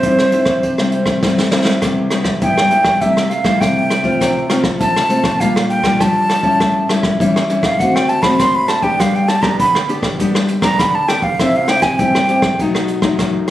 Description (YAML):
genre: samba and choro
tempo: 100 BPM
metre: 4/4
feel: straight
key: C major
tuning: A4 = 442 Hz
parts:
  - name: breathy jazz flute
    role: melody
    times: 0.0-12.6 s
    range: C5 to C6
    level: -16 LUFS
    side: right 1 dB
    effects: none
  - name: nylon-string guitar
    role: accompaniment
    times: 0.0-13.5 s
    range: F#2 to G4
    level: -16 LUFS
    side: left 2 dB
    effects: none
  - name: jazz brush drum kit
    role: drums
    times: 0.0-13.5 s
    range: hi-hat, kick drum, rim click, snare drum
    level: -19 LUFS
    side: right 1 dB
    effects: none
room: moderate studio reverb, RT60 0.6 s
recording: recorded on a phone in the room, studio reverb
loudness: -12 LUFS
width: side -13 dB against mid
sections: 0.0-1.8 A section; 1.8-13.5 B section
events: drum fill 1.2-1.8; flute solo 1.8-13.5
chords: 0.0 C; 1.8 Cmaj7; 3.0 Am7/C; 4.2 F/C; 5.4 Bb6; 6.6 A7; 7.8 D7; 9.0 G; 11.4 C; 12.6 B7